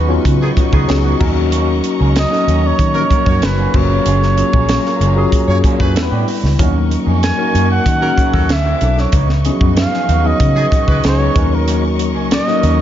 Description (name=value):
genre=polished 1980s jazz-funk pop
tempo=95 BPM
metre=4/4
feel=straight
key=Eb minor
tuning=A4 = 443 Hz
part: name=warm flugelhorn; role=melody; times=0.0-12.8 s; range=Bb4 to Ab5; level=-19 LUFS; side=right 1 dB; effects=diffuse ambient delay
part: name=tine electric piano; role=accompaniment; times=0.0-12.8 s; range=F3 to B4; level=-18 LUFS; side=left 2 dB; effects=medium stereo tremolo, lush chorus
part: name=warm studio string section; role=sustained chords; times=0.0-12.8 s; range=Ab4 to D6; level=-28 LUFS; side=left 2 dB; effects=none
part: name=electric guitar through a small old amp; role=riff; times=0.0-12.8 s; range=Bb3 to Bb4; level=-26 LUFS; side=right 6 dB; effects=wide subtle chorus
part: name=vintage muted fingered electric bass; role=bass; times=0.0-12.8 s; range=Gb1 to Eb3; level=-16 LUFS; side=equal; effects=tube saturation
part: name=crisp fusion drum kit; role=drums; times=0.3-12.8 s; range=crash cymbal, hi-hat, kick drum, snare drum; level=-17 LUFS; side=equal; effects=none
part: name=warm horn section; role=second line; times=0.4-11.1 s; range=Eb3 to Db5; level=-27 LUFS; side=equal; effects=diffuse ambient delay
room=moderate plate reverb, RT60 2.6 s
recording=dreamy mix soaked in reverb, nothing above 7.5 kHz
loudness=-12 LUFS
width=side -11 dB against mid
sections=0.0-12.8 A section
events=none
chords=0.0 Db9sus4; 1.2 Ebm7; 3.7 Gbmaj9; 6.0 Em7; 6.6 Ebm7; 8.5 D9; 9.1 Db9sus4; 11.4 Ebm7